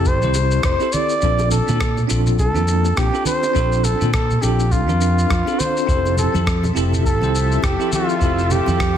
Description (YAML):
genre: sunset chillout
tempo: 103 BPM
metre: 4/4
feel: swing 58% on 16ths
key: F major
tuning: A4 = 440 Hz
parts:
  - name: trumpet with bucket mute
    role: melody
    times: 0.0-9.0 s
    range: F4 to D5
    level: -21 LUFS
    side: equal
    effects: digital delay
  - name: bell-like tine electric piano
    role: accompaniment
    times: 0.0-8.8 s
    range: Bb3 to C5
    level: -24 LUFS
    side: equal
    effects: fast stereo tremolo, auto-pan, digital delay
  - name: mellow fretless electric bass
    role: bass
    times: 0.0-9.0 s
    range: F1 to Bb2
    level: -19 LUFS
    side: equal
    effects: wide subtle chorus
  - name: downlifter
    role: sound effects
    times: 0.0-1.2 s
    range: none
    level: barely audible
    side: none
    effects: none
  - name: electronic kick drum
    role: drums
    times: 0.1-8.9 s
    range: none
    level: -22 LUFS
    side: equal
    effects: overdrive, studio ambience
  - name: electronic shaker and rim click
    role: drums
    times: 0.1-8.9 s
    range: none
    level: -28 LUFS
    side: left 2 dB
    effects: soft clipping on snare, studio ambience
  - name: congas and bongos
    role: percussion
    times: 0.2-8.8 s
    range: none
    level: -28 LUFS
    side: right 2 dB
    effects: none
  - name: lush unison pad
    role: sustained chords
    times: 5.9-9.0 s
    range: F3 to E5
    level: -27 LUFS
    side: left 2 dB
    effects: chorus
room: light reverb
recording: dense, heavily limited modern master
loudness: -16 LUFS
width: side -9 dB against mid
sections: 0.0-9.0 A section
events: none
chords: 0.0 Fmaj7; 1.2 Bbmaj7; 5.9 Fmaj7